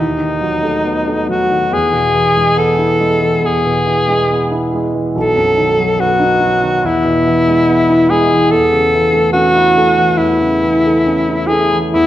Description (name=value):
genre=classical, romantic duo for alto saxophone and grand piano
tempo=70 BPM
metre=4/4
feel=rubato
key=E major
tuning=A4 = 437 Hz
part: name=clear alto saxophone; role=melody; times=0.0-12.1 s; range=D#4 to A4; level=-12 LUFS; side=left 1 dB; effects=none
part: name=warm concert grand piano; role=accompaniment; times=0.0-12.1 s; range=B1 to E4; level=-16 LUFS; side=right 1 dB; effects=none
room=wet recital hall reverb, RT60 1.7 s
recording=none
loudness=-11 LUFS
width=side -13 dB against mid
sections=0.0-12.1 A section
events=none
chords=0.0 B7/D#; 1.7 E; 5.2 B7; 6.8 E; 8.5 A/E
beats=0.85 | 1.74 2.59 3.44 4.31 | 5.15 5.99 6.83 7.68 | 8.51 9.34 10.18 11.05 | 11.94